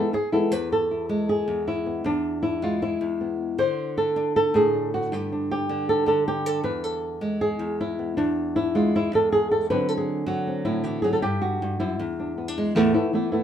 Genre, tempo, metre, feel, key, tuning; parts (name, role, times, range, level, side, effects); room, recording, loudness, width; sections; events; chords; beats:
flamenco; 157 BPM; 4/4; straight; A4 = 444 Hz
flamenco guitar; solo; 0.0-13.4 s; E2 to C5; -22 LUFS; equal
moderate studio ambience, RT60 0.5 s; band playing live in one room; -22 LUFS; side -9 dB against mid
0.5-12.8 A section
0.0 E; 3.6 D5; 5.1 G5; 6.6 E; 9.7 D7; 11.2 Emadd9; 12.0 E7; 12.8 Esus4
0.13 | 0.52 0.90 1.28 1.67 | 2.05 2.43 2.81 3.20 | 3.58 3.96 4.35 4.73 | 5.11 5.49 5.88 6.26 | 6.64 7.02 7.41 7.79 | 8.17 8.55 8.94 9.32 | 9.70 10.08 10.47 10.85 | 11.23 11.61 11.99 12.38 | 12.76 13.14